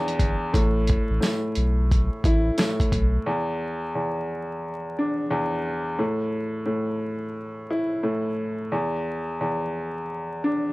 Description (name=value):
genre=hip hop, boom-bap hip-hop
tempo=88 BPM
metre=4/4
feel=swing 62% on 16ths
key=unclear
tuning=A4 = 440 Hz
part: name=warm upright piano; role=accompaniment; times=0.0-10.7 s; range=E2 to E4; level=-25 LUFS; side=equal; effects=high-pass filter, low-pass filter
part: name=dusty soul sampler-style drum kit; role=drums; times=0.1-3.1 s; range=hi-hat, kick drum, snare drum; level=-23 LUFS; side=equal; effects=none
part: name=warm sub bass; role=bass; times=0.2-3.2 s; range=G1 to B1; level=-23 LUFS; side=equal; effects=none
part: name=tambourine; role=percussion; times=1.2-2.8 s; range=none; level=-41 LUFS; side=right 3 dB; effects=none
room=little or no reverb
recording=vinyl crackle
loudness=-23 LUFS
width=side -21 dB against mid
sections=0.0-3.3 A section; 3.3-10.7 B section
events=none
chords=0.0 Em7; 0.5 A5; 3.3 Dsus2/E; 6.0 A5; 8.7 Dsus2/E